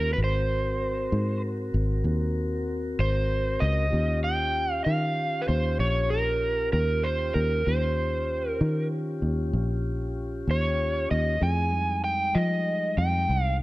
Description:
slow blues; 64 BPM (dotted quarters); 12/8; straight; Eb mixolydian; A4 = 440 Hz
overdriven slide guitar; melody; 0.0-13.6 s; Bb4 to Ab5; -27 LUFS; right 1 dB; slapback echo
mellow tonewheel organ; sustained chords; 0.0-13.6 s; G3 to Bb4; -34 LUFS; left 2 dB; slow rotary speaker
fingered electric bass; bass; 0.0-13.6 s; Ab1 to F3; -26 LUFS; equal
light reverb, digital ambience; dark, warm production; -24 LUFS; side -18 dB against mid
0.0-13.6 A section
0.2 Ab9; 3.9 Eb9; 11.4 Fm7

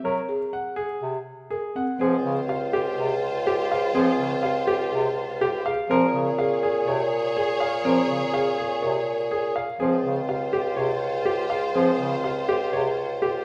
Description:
classical, minimalist pattern music; 123 BPM; 4/4; straight; A4 = 438 Hz
clear concert grand piano; melody; 0.0-13.4 s; G4 to F#5; -30 LUFS; equal
clear bass clarinet; accompaniment; 0.0-12.9 s; C3 to F#3; -31 LUFS; equal
buzzing marimba with soft mallets; arpeggios; 0.0-13.0 s; C4 to A#4; -31 LUFS; equal
rich symphonic string section; sustained chords; 2.0-13.4 s; F4 to Db5; -33 LUFS; equal
mellow bassoon; bass; 2.0-13.4 s; Db2 to Bb2; -30 LUFS; equal
wet recital hall reverb, RT60 1.7 s; -24 LUFS; mono
0.0-2.0 A section; 2.0-13.4 B section
0.0 G#9; 2.0 Dbmaj7; 5.9 Bbm9; 9.8 Dbmaj7

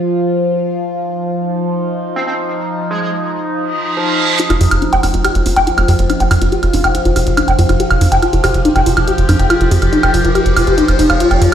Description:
psychedelic trance; 141 BPM; 4/4; straight; A4 = 440 Hz
overtone-sweeping drone; sustained chords; 0.0-11.5 s; F3 to G4; -18 LUFS; equal; chorus, built-in reverb, phaser
metallic wobble bass; second line; 2.2-4.4 s; F3 to C4; -22 LUFS; right 1 dB; lush chorus, vintage 12-bit sampler grit, high-pass filter, ping-pong delay
reverse cymbal and riser; sound effects; 3.7-11.5 s; -23 LUFS; right 2 dB
woody wave-folded pluck; riff; 4.4-11.5 s; Eb4 to G5; -15 LUFS; left 2 dB; chorus, auto-pan, ping-pong delay
electronic hi-hat and woodblock; drums; 4.4-11.5 s; -19 LUFS; right 3 dB; overdrive, small room ambience
tight sequencer bass; bass; 4.5-11.5 s; F1 to F2; -13 LUFS; equal
light reverb; played on a big sound system in a bare room, large studio reverb; -12 LUFS; side -9 dB against mid
0.0-4.4 A section; 4.4-11.5 B section
filter sweep on synth drone 0.0-4.4; reverse cymbal 3.7-4.4; build-up 4.4-11.5; riser 4.4-11.5; filter sweep on synth arpeggio sound 4.4-11.5
0.0 F7(no3); 4.4 F5

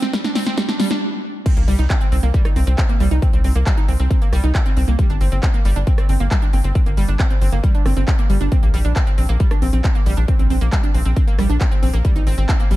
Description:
uplifting trance; 136 BPM; 4/4; straight; C minor; A4 = 439 Hz
analog pluck; arpeggios; 0.0-12.8 s; G3 to Eb4; -24 LUFS; right 3 dB; chorus, sidechain pumping, tape echo
big-room dance drum kit; drums; 0.0-12.8 s; crash cymbal, handclaps, hi-hat, rim click, snare drum; -26 LUFS; equal; overdrive, sidechain pumping on hats, studio reverb, sidechain pumping on cymbals
electronic kick drum; drums; 0.1-12.6 s; -17 LUFS; equal; overdrive, high-pass filter on kick, studio reverb
tight sequencer bass; bass; 1.6-12.8 s; G1 to C2; -17 LUFS; equal; sidechain pumping
little or no reverb; dark, warm production; -15 LUFS; side -16 dB against mid
0.0-1.5 A section; 1.5-12.8 B section
build-up 0.0-1.5; drum fill 0.0-1.0; stop 1.0-1.5; drop 1.5-12.8
0.0 G5; 1.5 Cm; 5.0 Gm; 8.5 Bbadd9; 12.0 Ab

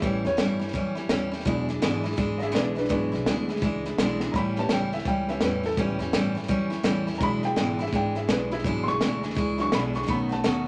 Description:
rockabilly; 167 BPM; 4/4; swing 62% on 8ths; E mixolydian; A4 = 440 Hz
dark upright piano; accompaniment; 0.0-10.7 s; D#3 to C#6; -33 LUFS; equal
picked steel-string acoustic guitar; accompaniment; 0.0-10.7 s; E2 to F#4; -30 LUFS; equal
upright bass; bass; 0.0-10.7 s; E1 to G2; -35 LUFS; equal
compact cocktail drum kit; drums; 0.0-10.5 s; hi-hat, kick drum, snare drum; -31 LUFS; equal
moderate club ambience, RT60 0.5 s; -26 LUFS; mono
0.0-10.7 A section
upright piano solo 0.0-10.7; drum fill 4.2
0.0 A7; 1.5 E7; 4.3 A7; 7.2 E7; 10.1 B7

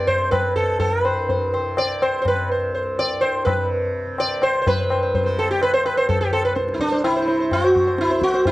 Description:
indian classical, Hindustani; 125 BPM; 4/4; straight; C raga yaman; A4 = 440 Hz
sitar; melody; 0.0-8.5 s; D4 to D5; -19 LUFS; right 1 dB
tanpura; drone; 0.0-8.5 s; C2 to C3; -33 LUFS; left 1 dB
tabla; percussion; 0.1-8.5 s; -24 LUFS; left 2 dB
small room reverb; dry, close 1970s-style studio recording; -18 LUFS; side -17 dB against mid
0.0-4.7 A section; 4.7-8.5 B section
speeding up 0.0-8.5

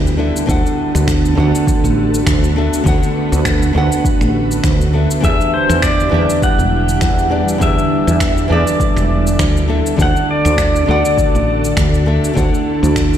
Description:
sunset chillout; 101 BPM; 4/4; swing 56% on 16ths; A4 = 443 Hz
nylon-string guitar; accompaniment; 0.0-13.2 s; D3 to F#5; -19 LUFS; moving between left 3 dB and right 4 dB; auto-pan, ping-pong delay
ethereal airy pad; sustained chords; 0.0-13.2 s; D3 to B4; -21 LUFS; right 1 dB; ensemble chorus, built-in reverb
woody fretless electric bass; bass; 0.0-13.2 s; E1 to E2; -15 LUFS; equal; tube saturation, analog chorus
electronic shaker and finger snaps; drums; 0.1-13.2 s; -25 LUFS; equal
electronic kick drum; drums; 0.5-13.1 s; -18 LUFS; equal; overdrive
pedal steel guitar; melody; 5.2-13.2 s; C5 to F#5; -18 LUFS; left 1 dB; digital delay
light reverb; played on a big sound system in a bare room, large studio reverb; -12 LUFS; side -10 dB against mid
0.0-13.2 A section
0.2 Bm7; 5.2 Em7; 9.7 Bm7

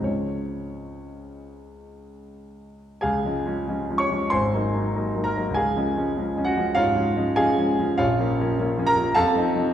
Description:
classical, romantic character piece for solo piano; 78-105 BPM; 4/4; rubato; Db major; A4 = 441 Hz
clear concert grand piano; solo; 0.0-9.7 s; Ab1 to Db6; -21 LUFS; equal
wet concert hall reverb, RT60 2.3 s; recorded in a church or concert hall; -21 LUFS; side -10 dB against mid
0.0-3.0 A section; 3.0-9.7 B section
0.1 Db; 4.3 Ab9; 5.6 Db; 8.0 Bbm; 9.2 F7

